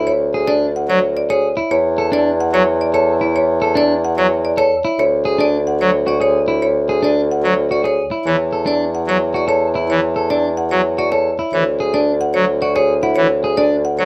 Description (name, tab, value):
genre	classical, minimalist pattern music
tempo	110 BPM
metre	3/4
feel	straight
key	E mixolydian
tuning	A4 = 440 Hz
part	clean electric guitar	arpeggios	0.0-13.8 s	D4 to A4	-23 LUFS	equal	none
part	mellow bassoon	bass	0.0-14.1 s	D2 to E2	-21 LUFS	equal	none
part	marimba with hard mallets	melody	0.1-14.1 s	C#5 to F#5	-20 LUFS	equal	none
part	pipe organ, trumpet	accompaniment	0.9-14.1 s	E3 to F#3	-21 LUFS	equal	none
room	light reverb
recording	close, detailed microphones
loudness	-16 LUFS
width	mono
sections	0.0-14.1 A section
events	none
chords	0.0 Dmaj7sus2; 1.7 E7sus4; 5.0 Dmaj7; 8.3 E9sus4; 11.5 Dmaj9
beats	| 0.07 0.62 1.17 | 1.71 2.26 2.80 | 3.35 3.89 4.44 | 4.99 5.53 6.08 | 6.62 7.17 7.71 | 8.26 8.80 9.35 | 9.89 10.44 10.98 | 11.53 12.07 12.62 | 13.17 13.71